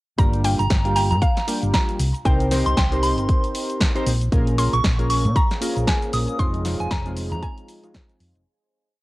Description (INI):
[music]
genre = deep house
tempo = 116 BPM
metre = 4/4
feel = swing 58% on 16ths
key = G phrygian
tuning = A4 = 443 Hz
[part]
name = mallet-like synth pluck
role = melody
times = 0.2-8.2 s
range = F5 to C6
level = -29 LUFS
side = left 1 dB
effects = chorus, cassette tape, tape echo
[part]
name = warm analog keys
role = stabs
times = 0.2-8.4 s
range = F3 to C5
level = -26 LUFS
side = equal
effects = chorus, sidechain pumping, cassette tape
[part]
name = hollow-body short-scale fingered electric bass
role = bass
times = 0.2-8.4 s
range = F1 to Bb2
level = -22 LUFS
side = equal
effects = sidechain pumping
[part]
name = electronic kick drum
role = drums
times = 0.2-8.1 s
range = none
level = -21 LUFS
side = equal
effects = cassette tape
[part]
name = house drum kit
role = drums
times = 0.2-8.4 s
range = hi-hat, shaker, snare drum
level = -27 LUFS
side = equal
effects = cassette tape
[part]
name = soft synth bell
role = melody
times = 0.6-7.5 s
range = Ab5 to Eb6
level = -26 LUFS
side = right 1 dB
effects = chorus, phaser, cassette tape, tape echo
[part]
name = deep dark ambient pad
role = sustained chords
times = 5.2-8.4 s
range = Ab4 to Ab5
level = -36 LUFS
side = equal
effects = chorus, built-in reverb, sidechain pumping, cassette tape
[sound]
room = digital ambience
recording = home recording on cassette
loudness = -18 LUFS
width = side -19 dB against mid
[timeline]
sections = 0.2-8.5 drop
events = drop 0.2-8.5; fade-out 5.7-8.5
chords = 0.2 Gm7; 2.0 Cm7; 4.3 Bbm7; 6.4 Fm7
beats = | 0.18 0.70 1.22 1.74 | 2.25 2.77 3.29 3.81 | 4.32 4.84 5.36 5.88 | 6.39 6.91 7.43 7.94